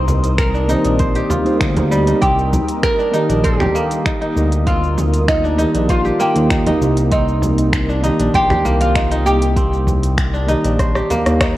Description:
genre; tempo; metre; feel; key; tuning
organic downtempo; 98 BPM; 4/4; straight; C minor; A4 = 441 Hz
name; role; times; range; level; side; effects
oud; melody; 0.0-11.4 s; Eb4 to C5; -20 LUFS; right 1 dB; tape echo
warm analog pad; sustained chords; 0.0-11.6 s; G3 to Eb6; -25 LUFS; left 1 dB; chorus, sidechain pumping
kora; arpeggios; 0.0-11.6 s; G3 to C5; -22 LUFS; equal; tape echo
smooth synth bass; bass; 0.0-11.6 s; Bb1 to Eb2; -18 LUFS; equal; tube saturation, sidechain pumping
deep house drum kit; drums; 0.1-11.5 s; cabasa, finger snaps, hi-hat, rim click; -24 LUFS; equal; small room ambience
frame drum; percussion; 0.1-11.2 s; none; -23 LUFS; right 1 dB; none
electronic kick drum; drums; 0.4-11.5 s; none; -20 LUFS; equal; small room ambience
mellow tine electric piano; accompaniment; 0.7-11.2 s; Eb3 to C5; -22 LUFS; right 2 dB; sidechain pumping, tape echo
room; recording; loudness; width
light reverb; worn, warbling old tape, cassette tape, warbly pitch drift; -13 LUFS; side -15 dB against mid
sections
0.0-11.6 A section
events
drum fill 10.8-11.6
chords
0.0 Cm7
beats
0.38 1.00 1.61 | 2.22 2.83 3.44 4.06 | 4.67 5.28 5.89 6.51 | 7.12 7.73 8.34 8.96 | 9.57 10.18 10.79 11.40

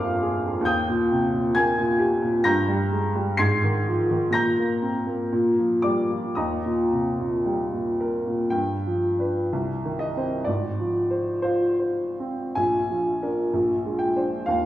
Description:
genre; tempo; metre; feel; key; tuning
classical, romantic character piece for solo piano; 51-68 BPM; 2/4; rubato; Eb major; A4 = 440 Hz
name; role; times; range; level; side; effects
clear upright piano; solo; 0.0-14.7 s; Ab1 to C7; -21 LUFS; equal; none
room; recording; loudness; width
wet recital hall reverb, RT60 1.4 s; heard from further back in the room; -21 LUFS; side -13 dB against mid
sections
0.0-8.5 A section; 8.5-14.7 B section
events
none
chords
0.0 Bb7; 0.7 Eb; 2.4 Gm; 3.4 Fm7/Ab; 4.3 Gmadd11/Bb; 5.3 Bb; 6.4 Eb; 8.5 G7; 9.5 Cm; 10.5 Fm/Ab; 12.6 Bb; 13.5 Bb13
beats
| 0.66 1.54 | 2.44 3.38 | 4.35 5.31 | 6.37 7.45 | 8.52 9.51 | 10.47 11.45 | 12.55 13.53 | 14.47

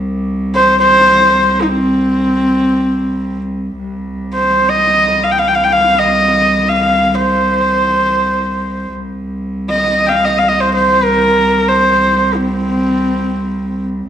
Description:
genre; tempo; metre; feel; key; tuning
mongolian traditional, Mongolian folk; free time; none; none; C yu mode; A4 = 440 Hz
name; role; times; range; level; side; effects
rich cello; drone; 0.0-14.1 s; C2; -18 LUFS; right 1 dB; none
rich horsehead fiddle; melody; 0.6-13.9 s; C4 to G5; -12 LUFS; equal; none
room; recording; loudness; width
wet recital hall reverb, RT60 1.3 s; dark, warm production; -11 LUFS; side -9 dB against mid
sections
0.0-3.8 A section; 3.8-14.1 A section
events
none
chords
none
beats
free time

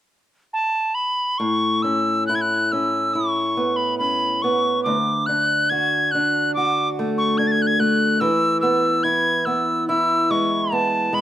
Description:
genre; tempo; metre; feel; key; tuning
celtic folk, Celtic slow air; 71 BPM; 4/4; rubato; A major; A4 = 441 Hz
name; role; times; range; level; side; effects
bright wooden whistle; melody; 0.5-11.2 s; A5 to A6; -20 LUFS; equal; slapback echo
fingerpicked acoustic archtop guitar; accompaniment; 1.4-11.2 s; D2 to F#4; -22 LUFS; equal; slapback echo
room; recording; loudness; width
little or no reverb; recorded outdoors, with no room sound; -18 LUFS; side -12 dB against mid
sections
0.0-1.4 A section; 1.4-11.2 B section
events
none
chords
0.0 N.C.; 1.4 Aadd9; 4.9 D; 8.2 E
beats
0.52 | 1.39 2.28 3.15 4.00 | 4.86 5.71 6.55 7.38 | 8.20 9.03 9.87 10.71

